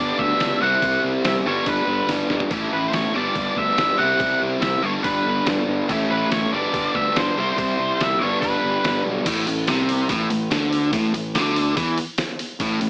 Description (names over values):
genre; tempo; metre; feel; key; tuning
blues rock power trio and southern rock; 142 BPM; 4/4; straight; unclear; A4 = 440 Hz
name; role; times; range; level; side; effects
octave-fuzz lead guitar; melody; 0.0-9.0 s; B4 to F#5; -22 LUFS; equal; distortion, slapback echo
biting overdriven guitar; riff; 0.0-12.9 s; G2 to E4; -21 LUFS; equal; none
fuzz picked electric bass; bass; 0.0-12.9 s; G1 to E2; -27 LUFS; equal; overdrive
trip hop sampler-style drum kit; drums; 0.2-12.9 s; crash cymbal, hi-hat, kick drum, snare drum, toms; -27 LUFS; equal; none
room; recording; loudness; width
light reverb; AM radio sound; -18 LUFS; side -28 dB against mid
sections
0.0-9.3 A section; 9.3-12.9 B section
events
drum fill 2.1-2.5; break 9.1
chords
0.0 G; 0.6 C; 1.5 G; 2.5 A; 3.2 G; 4.0 C; 4.8 G; 5.9 A; 6.5 G; 7.4 C; 8.2 G; 9.3 A5